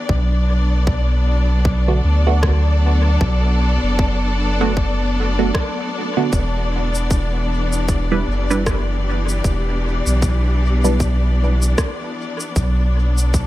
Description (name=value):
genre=ambient dub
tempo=77 BPM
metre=4/4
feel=swing 60% on 16ths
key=E minor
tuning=A4 = 439 Hz
part: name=clear symphonic string section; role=sustained chords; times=0.0-13.5 s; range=E3 to D5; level=-23 LUFS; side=left 2 dB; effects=vintage 12-bit sampler grit
part: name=soft dub sub bass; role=bass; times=0.1-13.5 s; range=E1 to D2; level=-17 LUFS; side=equal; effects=none
part: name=electronic kick drum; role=drums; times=0.1-13.5 s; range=none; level=-20 LUFS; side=equal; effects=overdrive
part: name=filtered dub chord stab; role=stabs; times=1.9-11.0 s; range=D3 to B4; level=-24 LUFS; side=right 4 dB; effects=phaser, dub echo
part: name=electronic rim click and shaker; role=drums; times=2.4-13.5 s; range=none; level=-27 LUFS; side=equal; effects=overdrive, dub echo
room=little or no reverb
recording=none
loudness=-15 LUFS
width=side -15 dB against mid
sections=0.0-13.5 A section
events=none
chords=0.1 Bm7; 6.3 Em7; 12.6 Bm7